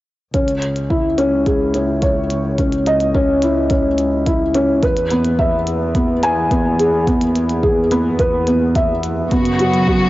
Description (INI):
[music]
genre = piano and strings electronica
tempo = 107 BPM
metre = 4/4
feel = straight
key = C# minor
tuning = A4 = 439 Hz
[part]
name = felt-muted upright piano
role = riff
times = 0.3-10.1 s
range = B3 to G#5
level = -16 LUFS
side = equal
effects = cassette tape, analog delay
[part]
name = rich studio double bass section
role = bass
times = 0.3-10.1 s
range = C#2 to F#2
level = -22 LUFS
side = left 1 dB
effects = sidechain pumping
[part]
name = electronic hi-hat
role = drums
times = 0.3-9.8 s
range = none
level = -31 LUFS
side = left 1 dB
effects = cassette tape
[part]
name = electronic kick drum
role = drums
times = 0.3-10.0 s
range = none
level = -20 LUFS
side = equal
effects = cassette tape
[part]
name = rich studio string section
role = sustained chords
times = 9.3-10.1 s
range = C#3 to F#4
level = -16 LUFS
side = equal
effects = sidechain pumping, cassette tape
[sound]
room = light reverb, small room ambience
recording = home recording on cassette, nothing above 7.7 kHz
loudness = -14 LUFS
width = side -16 dB against mid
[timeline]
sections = 0.3-10.1 A section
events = none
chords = 0.3 C#madd9; 4.8 E; 9.3 F#sus4